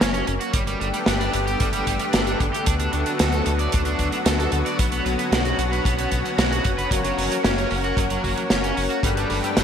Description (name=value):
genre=synthwave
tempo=113 BPM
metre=4/4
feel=straight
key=B minor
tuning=A4 = 440 Hz
part: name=lush unison pad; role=sustained chords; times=0.0-9.6 s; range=D3 to G4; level=-25 LUFS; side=left 1 dB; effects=chorus, sidechain pumping, shimmer reverb
part: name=crunchy overdriven guitar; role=riff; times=0.0-9.6 s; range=F#3 to D5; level=-28 LUFS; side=right 2 dB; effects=lush chorus, ping-pong delay, shimmer reverb
part: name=round analog bass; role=bass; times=0.0-9.6 s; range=F#1 to D2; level=-26 LUFS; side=equal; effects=none
part: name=modern studio drum kit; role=drums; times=0.0-9.6 s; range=hi-hat, snare drum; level=-24 LUFS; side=right 1 dB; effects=gated reverb
part: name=kick drum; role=drums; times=0.5-9.1 s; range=none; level=-25 LUFS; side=equal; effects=none
part: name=analog synth brass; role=stabs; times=6.9-9.6 s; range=G2 to C#5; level=-27 LUFS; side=left 3 dB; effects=chorus, digital delay, shimmer reverb
room=moderate lush hall reverb, RT60 1.7 s, small room ambience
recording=bright 1980s-style digital production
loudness=-19 LUFS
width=side -8 dB against mid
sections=0.0-9.6 A section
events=none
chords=0.0 F#; 0.5 Gadd9; 2.7 D6; 4.8 Bmadd9; 6.9 F#; 9.0 Gadd9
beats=0.01 | 0.54 1.07 1.60 2.13 | 2.67 3.20 3.73 4.26 | 4.79 5.32 5.85 6.38 | 6.91 7.45 7.98 8.51 | 9.04 9.57